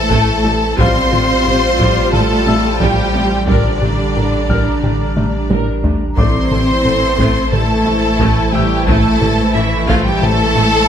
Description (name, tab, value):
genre	cinematic, hybrid orchestral and electronic film score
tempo	89 BPM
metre	4/4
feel	straight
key	A phrygian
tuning	A4 = 441 Hz
part	warm symphonic violin section	melody	0.0-10.9 s	D5 to C6	-21 LUFS	left 2 dB	none
part	rich studio violin section	second line	0.0-10.9 s	D4 to C5	-20 LUFS	equal	none
part	rich symphonic viola section	accompaniment	0.0-10.9 s	F3 to Bb4	-23 LUFS	right 1 dB	none
part	hollow soft pad	sustained chords	0.0-10.9 s	E3 to Bb5	-25 LUFS	equal	chorus
part	mellow trombone section	sustained chords	0.0-10.9 s	A2 to G3	-25 LUFS	right 6 dB	none
part	warm French horn section	sustained chords	0.0-10.9 s	G3 to F4	-25 LUFS	left 4 dB	none
part	warm sub bass	bass	0.0-10.9 s	A1	-21 LUFS	equal	none
part	warm symphonic cello section	bass	0.0-10.9 s	D3 to C4	-20 LUFS	equal	none
part	warm grand piano	texture	0.0-10.9 s	D5 to F6	-28 LUFS	left 5 dB	none
part	soft round pluck	arpeggios	0.1-10.8 s	F3 to A4	-27 LUFS	right 3 dB	none
part	rubbery square bass	riff	0.1-10.8 s	A2 to A3	-21 LUFS	left 2 dB	none
part	rich symphonic double bass section	bass	0.1-10.6 s	A1	-24 LUFS	right 3 dB	none
part	solo taiko drums	drums	0.1-10.5 s	none	-20 LUFS	equal	none
room	moderate scoring stage reverb, RT60 1.8 s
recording	none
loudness	-12 LUFS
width	side -8 dB against mid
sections	0.0-10.9 A section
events	drum fill 5.2-6.2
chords	0.0 Fadd9/A; 3.5 Gmadd9/A; 6.2 Am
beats	0.11 | 0.79 1.46 2.13 2.81 | 3.48 4.16 4.83 5.50 | 6.18 6.85 7.53 8.20 | 8.88 9.55 10.22